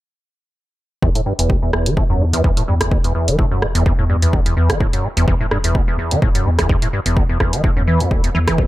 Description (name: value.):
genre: acid house.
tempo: 127 BPM.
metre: 4/4.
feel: swing 54% on 16ths.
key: E minor.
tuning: A4 = 440 Hz.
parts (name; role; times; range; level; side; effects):
liquid acid bass; riff; 1.0-8.7 s; D2 to E3; -18 LUFS; equal; chorus, sidechain pumping, dub echo.
saturated sub bass; bass; 1.0-8.7 s; E1 to E2; -20 LUFS; equal; tube saturation, sidechain pumping.
electronic kick drum; drums; 1.0-8.7 s; none; -18 LUFS; equal; overdrive, small room ambience.
punchy analog drum machine; drums; 1.2-8.6 s; hi-hat, rim click; -22 LUFS; right 1 dB; small room ambience.
room: little or no reverb.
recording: none.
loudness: -14 LUFS.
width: side -16 dB against mid.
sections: 1.0-8.7 A section.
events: none.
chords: none.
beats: | 1.02 1.50 1.97 2.44 | 2.92 3.39 3.86 4.33 | 4.80 5.28 5.75 6.22 | 6.69 7.17 7.64 8.11 | 8.58.